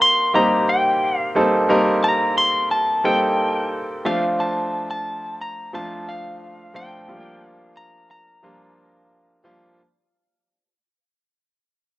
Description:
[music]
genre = pop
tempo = 89 BPM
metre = 4/4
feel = straight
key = C dorian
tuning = A4 = 438 Hz
[part]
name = lightly driven lead guitar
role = melody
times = 0.0-9.4 s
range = F5 to C6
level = -20 LUFS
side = left 1 dB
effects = none
[part]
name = clear baby grand piano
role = accompaniment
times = 0.0-9.8 s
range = F3 to Bb4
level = -21 LUFS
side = right 1 dB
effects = cassette tape
[sound]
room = moderate studio reverb, RT60 0.6 s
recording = home recording on cassette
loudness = -17 LUFS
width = side -17 dB against mid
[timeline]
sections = 0.0-9.8 A section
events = fade-out 0.0-9.8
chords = 0.0 Cm7; 4.1 Dm7; 7.1 Gm7

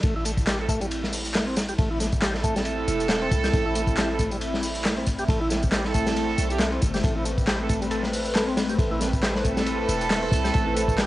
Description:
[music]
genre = breakbeat, breaks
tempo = 137 BPM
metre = 4/4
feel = swing 56% on 16ths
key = A minor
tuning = A4 = 440 Hz
[part]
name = phased analog pad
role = sustained chords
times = 0.4-11.1 s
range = A3 to B4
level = -30 LUFS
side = left 1 dB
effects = phaser, chorus, sidechain pumping, cassette tape
[part]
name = percussive tonewheel organ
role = riff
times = 0.0-11.1 s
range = G3 to A4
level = -31 LUFS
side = equal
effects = overdrive, chorus vibrato, slow rotary speaker, tube saturation, cassette tape, analog delay
[part]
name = warm 808-style bass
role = bass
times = 0.0-11.1 s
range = E1 to C2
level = -30 LUFS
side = equal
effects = none
[part]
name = crunchy breakbeat drum kit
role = drums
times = 0.0-11.1 s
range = hi-hat, kick drum, ride cymbal, snare drum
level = -26 LUFS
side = equal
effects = cassette tape
[part]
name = electronic tambourine and handclaps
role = drums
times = 0.0-11.1 s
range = none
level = -32 LUFS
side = equal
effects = overdrive, cassette tape
[part]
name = clear brass ensemble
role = stabs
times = 0.6-11.1 s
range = A3 to A4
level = -29 LUFS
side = right 5 dB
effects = cassette tape, analog delay
[sound]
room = small room ambience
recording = home recording on cassette, high-pass filter, nothing above 10.7 kHz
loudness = -22 LUFS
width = side -16 dB against mid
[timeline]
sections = 0.0-11.1 A section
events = drop 0.0-11.1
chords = 0.0 Am

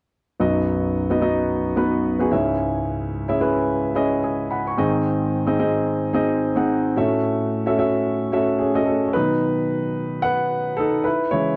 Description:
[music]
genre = pop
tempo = 110 BPM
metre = 4/4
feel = swing 56% on 16ths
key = unclear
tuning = A4 = 439 Hz
[part]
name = warm concert grand piano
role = solo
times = 0.4-11.6 s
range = B1 to C#6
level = -21 LUFS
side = equal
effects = none
[sound]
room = light reverb, studio reverb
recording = dry, close 1970s-style studio recording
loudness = -21 LUFS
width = mono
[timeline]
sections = 0.4-9.1 A section; 9.1-11.6 B section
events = grand piano solo 9.1-11.6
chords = 0.4 B; 2.3 C#m; 4.8 G#; 7.0 F#m7/A; 9.1 B; 11.1 C#m

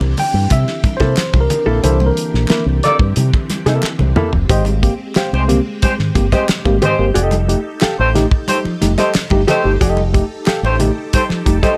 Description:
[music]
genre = funk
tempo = 90 BPM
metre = 4/4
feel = straight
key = unclear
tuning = A4 = 440 Hz
[part]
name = string machine, violins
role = sustained chords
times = 0.0-11.8 s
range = D3 to A4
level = -29 LUFS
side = equal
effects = ensemble chorus
[part]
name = fingered electric bass with an envelope filter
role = bass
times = 0.0-11.6 s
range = F1 to C3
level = -19 LUFS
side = equal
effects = none
[part]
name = congas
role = percussion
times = 0.0-11.8 s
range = none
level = -27 LUFS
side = equal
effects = none
[part]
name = tine electric piano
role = stabs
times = 0.2-11.6 s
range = Ab2 to G5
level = -21 LUFS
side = equal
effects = phaser
[part]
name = damped 70s drum kit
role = drums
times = 0.2-11.8 s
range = hi-hat, kick drum, snare drum, toms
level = -20 LUFS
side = equal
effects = none
[part]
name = hollow-body jazz guitar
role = accompaniment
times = 1.0-11.8 s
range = Bb3 to F5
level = -21 LUFS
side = equal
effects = none
[part]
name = group handclap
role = percussion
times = 1.2-10.6 s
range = none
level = -29 LUFS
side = equal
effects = none
[part]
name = mellow horn section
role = second line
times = 2.8-11.7 s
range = Ab3 to D5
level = -20 LUFS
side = equal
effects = none
[sound]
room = light reverb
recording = none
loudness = -15 LUFS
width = mono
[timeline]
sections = 0.0-4.5 A section; 4.5-11.8 B section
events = tine electric piano solo 0.0-4.5; band accent 1.8-4.5; drum fill 3.8-4.5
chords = 0.0 C13; 4.5 Abmaj7; 7.1 F9

